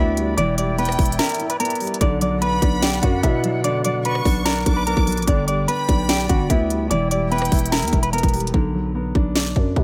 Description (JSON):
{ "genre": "hip hop, trap", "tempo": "147 BPM", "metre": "4/4", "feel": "half-time", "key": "B harmonic minor", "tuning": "A4 = 435 Hz", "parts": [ { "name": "mellow electric guitar", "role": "melody", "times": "0.0-8.5 s", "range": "E4 to D6", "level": "-26 LUFS", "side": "equal", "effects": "warbly pitch drift, low-pass filter, delay" }, { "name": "dark baby grand piano", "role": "accompaniment", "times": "0.0-9.8 s", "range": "D3 to E5", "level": "-29 LUFS", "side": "equal", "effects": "low-pass filter" }, { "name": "small flute group", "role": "sustained chords", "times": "0.0-8.5 s", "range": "D4 to G5", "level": "-34 LUFS", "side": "equal", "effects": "none" }, { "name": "growling 808-style bass", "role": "bass", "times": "0.0-9.8 s", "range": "E1 to B2", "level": "-25 LUFS", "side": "equal", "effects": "none" }, { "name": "trap drum kit", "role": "drums", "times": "0.2-9.8 s", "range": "hi-hat, kick drum, rim click, snare drum", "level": "-23 LUFS", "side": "equal", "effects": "none" }, { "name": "clear studio violin section", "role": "second line", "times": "0.8-7.7 s", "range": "G5 to D6", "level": "-34 LUFS", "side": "equal", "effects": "delay" } ], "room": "studio ambience", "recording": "none", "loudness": "-20 LUFS", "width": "mono", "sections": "0.0-8.5 A section; 8.5-9.8 B section", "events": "break 1.2-2.0; hi-hats muted 8.5-9.8", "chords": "0.4 Em; 2.0 Bm; 5.3 G; 6.9 Em; 8.5 Bm" }